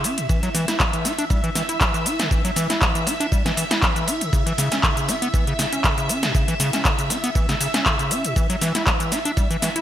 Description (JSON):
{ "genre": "acid house", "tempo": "119 BPM", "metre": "4/4", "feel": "swing 54% on 16ths", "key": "C# minor pentatonic", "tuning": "A4 = 439 Hz", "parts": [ { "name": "string machine, full ensemble", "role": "sustained chords", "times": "0.0-9.8 s", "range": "E5", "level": "-27 LUFS", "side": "equal", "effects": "ensemble chorus, sidechain pumping" }, { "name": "deep acid bass", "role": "riff", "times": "0.0-9.8 s", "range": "B2 to E4", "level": "-25 LUFS", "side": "equal", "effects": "overdrive, ping-pong delay" }, { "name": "dusty soul sampler-style drum kit", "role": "drums", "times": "0.0-9.8 s", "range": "ride cymbal, snare drum", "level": "-34 LUFS", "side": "right 2 dB", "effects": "none" }, { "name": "electro analog drum machine", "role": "drums", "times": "0.0-9.8 s", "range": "handclaps, hi-hat, shaker, snare drum", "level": "-23 LUFS", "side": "equal", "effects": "gated reverb" }, { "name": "electronic kick drum", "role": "drums", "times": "0.3-9.5 s", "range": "none", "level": "-22 LUFS", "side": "equal", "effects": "none" } ], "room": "light reverb, digital ambience", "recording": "bright 1980s-style digital production", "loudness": "-18 LUFS", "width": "side -11 dB against mid", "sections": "0.0-9.8 A section", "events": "none", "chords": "0.3 N.C.; 4.3 C#m; 8.4 N.C." }